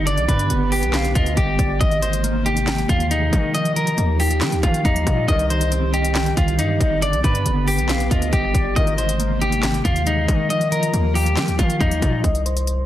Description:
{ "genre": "hip hop, trap", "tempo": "138 BPM", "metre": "4/4", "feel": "half-time", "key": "C minor", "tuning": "A4 = 440 Hz", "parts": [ { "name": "electric guitar at the edge of break-up", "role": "melody", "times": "0.0-12.9 s", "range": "Eb4 to Eb5", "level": "-23 LUFS", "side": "left 1 dB", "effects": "spring reverb, low-pass filter, tape echo" }, { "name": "silver concert flute", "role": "second line", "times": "0.0-12.2 s", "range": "D5 to G5", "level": "-29 LUFS", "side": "left 2 dB", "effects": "tape echo" }, { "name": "mellow electric guitar", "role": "accompaniment", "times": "0.0-12.2 s", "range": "D3 to Eb5", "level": "-25 LUFS", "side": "right 2 dB", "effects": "tremolo, low-pass filter" }, { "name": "airy breathy pad", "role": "sustained chords", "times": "0.0-12.2 s", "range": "C3 to G4", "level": "-30 LUFS", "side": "right 1 dB", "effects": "chorus" }, { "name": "distorted 808-style bass", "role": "bass", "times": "0.0-12.9 s", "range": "G1 to Eb3", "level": "-22 LUFS", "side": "equal", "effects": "distortion" }, { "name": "trap drum kit", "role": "drums", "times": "0.1-12.8 s", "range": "handclaps, hi-hat, kick drum, snare drum", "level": "-22 LUFS", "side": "equal", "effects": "none" }, { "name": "mellow brass ensemble", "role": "stabs", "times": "5.3-5.6, 8.8-9.1 s", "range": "C2 to Eb3", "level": "-30 LUFS", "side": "left 3 dB", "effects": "none" } ], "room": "light reverb, digital ambience", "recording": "dense, heavily limited modern master, lossy compression artefacts", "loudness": "-17 LUFS", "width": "side -12 dB against mid", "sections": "0.0-12.2 A section", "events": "none", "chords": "0.1 G; 1.8 Abadd9; 3.5 Ebadd9; 5.3 Cm; 7.0 G; 8.8 Abadd9; 10.5 Ebadd9; 12.2 Cm" }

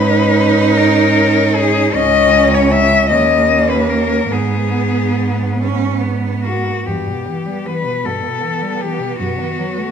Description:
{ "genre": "classical, lyrical piece for cello ensemble", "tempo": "45-53 BPM (dotted quarters)", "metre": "6/8", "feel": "rubato", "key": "G# minor, E minor from 6.9 s", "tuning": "A4 = 441 Hz", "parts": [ { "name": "rich cello", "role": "melody", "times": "0.0-9.9 s", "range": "F#4 to E5", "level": "-16 LUFS", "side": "left 6 dB", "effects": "none" }, { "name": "rich cello", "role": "second line", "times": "0.0-9.9 s", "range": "A#3 to D#4", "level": "-19 LUFS", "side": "right 7 dB", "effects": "none" }, { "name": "dark cello", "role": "accompaniment", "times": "0.0-9.9 s", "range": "G2 to C#4", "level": "-21 LUFS", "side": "left 2 dB", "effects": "none" }, { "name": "warm cello", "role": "bass", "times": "0.0-9.9 s", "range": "C#2 to B2", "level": "-18 LUFS", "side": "right 3 dB", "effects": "none" } ], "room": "wet recital hall reverb, RT60 1.5 s", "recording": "none", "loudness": "-12 LUFS", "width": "side -7 dB against mid", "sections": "0.0-6.9 A section; 6.9-9.9 B section", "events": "none", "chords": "0.0 G#madd11; 2.0 C#madd9; 3.1 D#5; 4.3 G#m; 6.9 Em; 9.2 B7/F#" }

